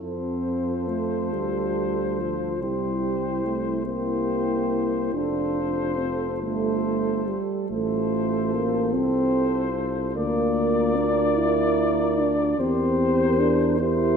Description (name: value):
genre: classical, hymn-like piece for brass band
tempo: 45-50 BPM (dotted quarters)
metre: 6/8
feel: rubato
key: F major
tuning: A4 = 440 Hz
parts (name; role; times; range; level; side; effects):
- warm flugelhorn; melody; 0.0-14.2 s; C5 to D5; -29 LUFS; left 6 dB; none
- dark French horn section; second line; 0.0-14.2 s; G4 to Bb4; -30 LUFS; right 8 dB; none
- dark euphonium; accompaniment; 0.0-14.2 s; E4 to G4; -31 LUFS; left 6 dB; none
- dark euphonium; accompaniment; 0.0-14.2 s; F3 to E4; -25 LUFS; right 2 dB; none
- dark tuba; bass; 0.0-14.2 s; F1 to F2; -29 LUFS; left 1 dB; none
room: moderate scoring stage reverb, RT60 1.9 s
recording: minimal, uncompressed stereo recording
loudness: -22 LUFS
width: side -6 dB against mid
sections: 0.0-14.2 A section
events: none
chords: 0.0 F; 2.6 C7; 5.1 F; 7.7 F/A; 10.2 Bb/D; 12.6 C7/E